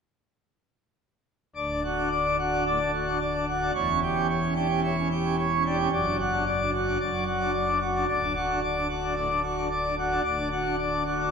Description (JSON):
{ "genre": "classical, organ toccata", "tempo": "111 BPM", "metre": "4/4", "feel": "straight", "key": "D major", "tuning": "A4 = 440 Hz", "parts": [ { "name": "pipe organ, plenum", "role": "solo", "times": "1.6-11.3 s", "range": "D1 to D5", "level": "-24 LUFS", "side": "equal", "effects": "none" } ], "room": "wet church reverb, RT60 2.5 s", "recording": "minimal, uncompressed stereo recording", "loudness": "-24 LUFS", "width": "side -6 dB against mid", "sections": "1.6-11.3 A section", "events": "none", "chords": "1.6 D; 3.8 Em6; 5.9 D/F#; 8.1 D" }